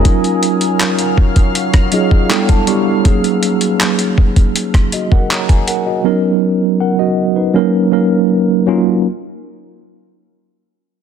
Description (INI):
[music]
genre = contemporary R&B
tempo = 80 BPM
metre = 4/4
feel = straight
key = F# major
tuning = A4 = 442 Hz
[part]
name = mellow tine electric piano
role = accompaniment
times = 0.0-9.1 s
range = F#3 to C#6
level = -14 LUFS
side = right 2 dB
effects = medium stereo tremolo
[part]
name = deep dark ambient pad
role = sustained chords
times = 0.0-3.0 s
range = F#3 to E#6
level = -22 LUFS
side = left 1 dB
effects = chorus, built-in reverb
[part]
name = direct-recorded clean electric guitar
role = arpeggios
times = 0.0-0.6 s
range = F#3 to G#4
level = -31 LUFS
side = left 4 dB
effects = none
[part]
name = dusty soul sampler-style drum kit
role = drums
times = 0.1-5.9 s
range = handclaps, hi-hat, kick drum, rim click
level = -13 LUFS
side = equal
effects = none
[sound]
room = light reverb, digital ambience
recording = dense, heavily limited modern master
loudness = -11 LUFS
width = side -8 dB against mid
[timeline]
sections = 0.0-9.1 A section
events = tine electric piano fill 1.6-3.1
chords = 0.1 D#m9/F#; 2.3 G69; 3.1 F#69; 6.1 Bmaj9; 7.6 F#6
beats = | 0.05 0.80 1.55 2.30 | 3.05 3.80 4.55 5.30 | 6.05 6.80 7.55 8.30